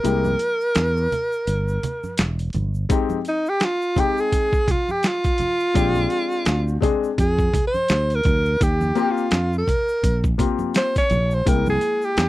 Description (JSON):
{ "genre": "hip hop, jazz-hop", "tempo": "84 BPM", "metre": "4/4", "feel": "swing 58% on 16ths", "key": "F minor", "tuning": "A4 = 444 Hz", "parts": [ { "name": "breathy alto saxophone", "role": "melody", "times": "0.0-12.3 s", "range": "Eb4 to Db5", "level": "-22 LUFS", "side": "right 1 dB", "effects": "none" }, { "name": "warm grand piano", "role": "accompaniment", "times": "0.0-12.3 s", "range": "Ab3 to G5", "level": "-24 LUFS", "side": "left 7 dB", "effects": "none" }, { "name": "fretless electric bass", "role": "bass", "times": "0.0-12.3 s", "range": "E1 to F2", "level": "-22 LUFS", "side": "equal", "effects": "none" }, { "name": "boom bap sampler-style drum kit", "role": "drums", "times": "0.0-12.3 s", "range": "hi-hat, kick drum, snare drum", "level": "-22 LUFS", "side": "equal", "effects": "none" }, { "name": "tube shaker and congas", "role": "percussion", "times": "0.1-12.3 s", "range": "none", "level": "-32 LUFS", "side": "right 3 dB", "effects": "none" } ], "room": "little or no reverb", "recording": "dry, close 1970s-style studio recording", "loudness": "-18 LUFS", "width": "side -16 dB against mid", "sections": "0.0-2.9 A section; 2.9-12.3 B section", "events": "break 0.0-2.9; alto saxophone solo 2.9-12.3", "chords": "0.0 C7b13; 2.9 Fm7; 5.8 Bb13 (rootless); 8.6 Eb69 (rootless); 11.5 C7b13", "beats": "| 0.04 0.75 1.47 2.18 | 2.90 3.61 4.33 5.04 | 5.75 6.47 7.18 7.90 | 8.61 9.32 10.04 10.75 | 11.47 12.18" }